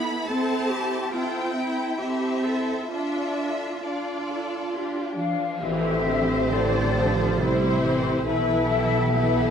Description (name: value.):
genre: cinematic, emotional film score for orchestra.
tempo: 68 BPM.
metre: 3/4.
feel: rubato.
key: A minor.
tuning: A4 = 437 Hz.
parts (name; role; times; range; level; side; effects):
rich studio violin section; melody; 0.0-9.5 s; G4 to B5; -33 LUFS; left 1 dB; none.
rich studio violin section; second line; 0.0-9.5 s; E4 to C5; -34 LUFS; left 2 dB; none.
warm studio viola section; accompaniment; 0.0-9.5 s; D3 to E4; -27 LUFS; right 1 dB; none.
warm studio cello section; bass; 0.0-9.5 s; C3 to A4; -30 LUFS; right 1 dB; none.
cymbal swell and tam-tam; percussion; 2.9-9.1 s; none; -34 LUFS; left 3 dB; none.
mellow flute section; second line; 5.2-9.5 s; C5 to F5; -27 LUFS; left 4 dB; none.
mellow French horn section; sustained chords; 5.6-9.5 s; B3 to A4; -28 LUFS; left 2 dB; none.
rich studio double bass section; bass; 5.6-9.5 s; A1 to B1; -28 LUFS; right 3 dB; none.
room: wet recital hall reverb, RT60 1.3 s.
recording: none.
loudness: -22 LUFS.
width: side -7 dB against mid.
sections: 0.0-5.6 A section; 5.6-9.5 A section.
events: band accent 5.6-6.5.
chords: 0.3 C6; 2.9 Dm; 5.6 Am7; 8.3 Esus4/B.